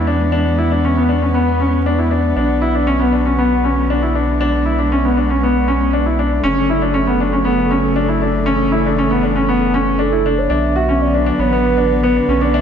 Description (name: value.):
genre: piano and strings electronica.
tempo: 118 BPM.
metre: 4/4.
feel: straight.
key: B dorian.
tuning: A4 = 437 Hz.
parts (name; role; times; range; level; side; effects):
dark string quartet; sustained chords; 0.0-12.6 s; C#3 to B3; -20 LUFS; left 1 dB; none.
clear concert grand piano; riff; 0.0-12.6 s; B3 to F#4; -16 LUFS; left 1 dB; tape echo.
round analog bass; bass; 0.0-12.6 s; F#1 to E2; -20 LUFS; right 1 dB; none.
warm velvety synth lead; melody; 10.0-12.6 s; A4 to E5; -19 LUFS; right 3 dB; chorus, tape echo.
room: wet concert hall reverb, RT60 1.7 s.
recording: dark, warm production.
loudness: -13 LUFS.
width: side -8 dB against mid.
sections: 0.0-10.5 A section; 10.5-12.6 B section.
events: build-up 10.5-12.6; filter sweep on soft synth lead 10.5-12.6.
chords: 0.0 E; 2.4 Bm; 6.4 F#m; 10.5 Bm.